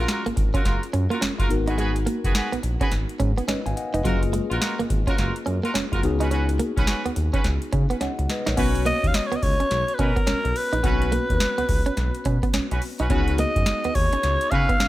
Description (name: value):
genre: R&B, new jack swing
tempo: 106 BPM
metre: 4/4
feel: swing 62% on 16ths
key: unclear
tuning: A4 = 440 Hz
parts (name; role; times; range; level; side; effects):
- tine electric piano; accompaniment; 0.0-14.9 s; A#3 to G#5; -30 LUFS; left 5 dB; phaser
- clear horn section; stabs; 0.0-14.7 s; C#4 to B4; -30 LUFS; right 2 dB; tape echo
- smooth synth bass; bass; 0.0-14.9 s; E#1 to C#3; -25 LUFS; equal; none
- booming analog drum machine; drums; 0.1-14.9 s; crash cymbal, hi-hat, kick drum, snare drum; -25 LUFS; equal; none
- direct-recorded clean electric guitar; riff; 0.3-14.9 s; F#3 to D#4; -29 LUFS; right 4 dB; lush chorus
- raspy alto saxophone; melody; 8.9-14.9 s; A#4 to E#5; -24 LUFS; equal; none
room: little or no reverb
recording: none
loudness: -20 LUFS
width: side -16 dB against mid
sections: 0.0-8.6 A section; 8.6-14.9 B section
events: drum fill 8.0-8.6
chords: 0.0 F#maj7; 1.5 G#m7; 4.0 F#maj7; 6.0 C#7sus4; 8.6 Bsus2; 13.1 C#7sus4